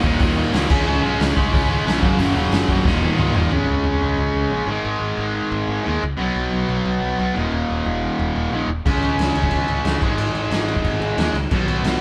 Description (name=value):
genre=punk rock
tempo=180 BPM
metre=4/4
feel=straight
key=unclear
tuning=A4 = 444 Hz
part: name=distorted electric guitar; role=riff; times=0.0-12.0 s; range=Eb2 to Db4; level=-29 LUFS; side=equal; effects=overdrive
part: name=distorted electric guitar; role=riff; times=0.0-12.0 s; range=Eb2 to Db4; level=-24 LUFS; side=equal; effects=distortion
part: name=tight distorted guitar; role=riff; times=0.0-3.5 s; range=Eb2 to Ab4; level=-29 LUFS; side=equal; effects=distortion
part: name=modern bright picked electric bass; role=bass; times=0.0-11.9 s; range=Eb1 to Eb2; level=-28 LUFS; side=equal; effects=none
part: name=raw garage drum kit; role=drums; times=0.0-3.4, 8.9-11.9 s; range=crash cymbal, hi-hat, kick drum, snare drum, toms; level=-23 LUFS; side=equal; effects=none
room=light reverb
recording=band playing live in one room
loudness=-20 LUFS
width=mono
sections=0.0-3.5 A section; 3.5-12.0 B section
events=drum fill 2.8-3.5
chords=0.0 Ebm; 0.7 Db; 2.0 Ebm; 3.5 Db5; 4.7 Ab5; 6.2 B5; 7.4 Eb5; 8.9 Db5; 10.0 Ab5